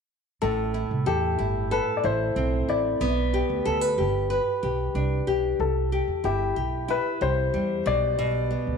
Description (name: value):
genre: acoustic pop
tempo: 93 BPM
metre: 4/4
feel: straight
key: unclear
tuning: A4 = 440 Hz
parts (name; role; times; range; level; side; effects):
- warm upright piano; melody; 0.4-8.8 s; G4 to D5; -27 LUFS; left 6 dB; none
- nylon-string guitar; accompaniment; 0.4-8.8 s; A2 to B4; -26 LUFS; equal; none
- upright bass; bass; 0.4-8.8 s; G1 to E2; -28 LUFS; right 2 dB; none
room: moderate echo chamber reverb, RT60 1.7 s, small room reverb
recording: none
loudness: -23 LUFS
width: side -6 dB against mid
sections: 0.4-8.8 A section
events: none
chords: 0.4 Am7; 3.0 G; 5.6 C6; 7.9 E5/B